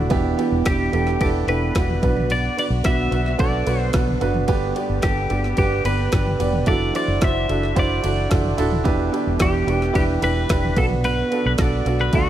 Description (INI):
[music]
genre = piano-driven pop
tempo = 110 BPM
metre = 4/4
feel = straight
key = unclear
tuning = A4 = 438 Hz
[part]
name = clear concert grand piano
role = accompaniment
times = 0.0-12.3 s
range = G2 to D5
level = -23 LUFS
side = right 4 dB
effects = analog delay
[part]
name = warm studio string section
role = sustained chords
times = 0.0-12.3 s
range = D3 to G4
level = -32 LUFS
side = left 3 dB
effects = none
[part]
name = vintage muted fingered electric bass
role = bass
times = 0.0-12.3 s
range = Eb1 to D2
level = -23 LUFS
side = equal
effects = none
[part]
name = deep house drum kit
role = drums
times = 0.1-12.3 s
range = kick drum, ride cymbal, snare drum, toms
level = -23 LUFS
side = equal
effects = none
[part]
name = twelve-string electric guitar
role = melody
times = 0.7-12.3 s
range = F#4 to E5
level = -25 LUFS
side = left 1 dB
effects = analog delay
[sound]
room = light reverb, digital ambience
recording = echo-heavy mix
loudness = -18 LUFS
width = side -11 dB against mid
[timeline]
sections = 0.0-12.3 A section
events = none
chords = 0.1 Em7; 2.0 Bm; 4.5 G; 6.7 Dadd9/F#; 8.9 Em7; 10.8 Bm